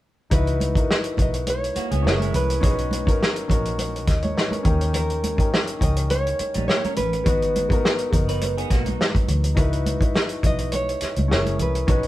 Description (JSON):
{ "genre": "lush 1970s-style soul", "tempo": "104 BPM", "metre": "4/4", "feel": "swing 54% on 16ths", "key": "C# dorian", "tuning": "A4 = 438 Hz", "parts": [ { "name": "nylon-string guitar", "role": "melody", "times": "0.3-12.1 s", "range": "A#4 to D#5", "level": "-27 LUFS", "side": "right 1 dB", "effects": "none" }, { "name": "warm baby grand piano", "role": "accompaniment", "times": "0.3-12.1 s", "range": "B3 to D#5", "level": "-27 LUFS", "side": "left 2 dB", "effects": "none" }, { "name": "vintage muted fingered electric bass", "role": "bass", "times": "0.3-12.1 s", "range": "F#1 to D#2", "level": "-24 LUFS", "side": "equal", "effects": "none" }, { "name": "warm soul drum kit", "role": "drums", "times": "0.3-12.1 s", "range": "hi-hat, kick drum, snare drum", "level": "-22 LUFS", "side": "equal", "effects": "none" }, { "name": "congas", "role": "percussion", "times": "0.3-12.0 s", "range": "none", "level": "-32 LUFS", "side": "right 2 dB", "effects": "none" }, { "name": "electric guitar through a small old amp", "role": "riff", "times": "1.8-2.6, 6.5-9.5 s", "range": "F#3 to B4", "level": "-30 LUFS", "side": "right 5 dB", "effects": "none" } ], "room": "light reverb", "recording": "band playing live in one room", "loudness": "-19 LUFS", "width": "side -15 dB against mid", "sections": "0.3-12.1 A section", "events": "none", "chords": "0.3 C#m11; 2.0 F#7; 2.6 Bmaj7; 4.7 D#7; 7.3 G#m7; 9.6 C#m11; 11.3 F#7" }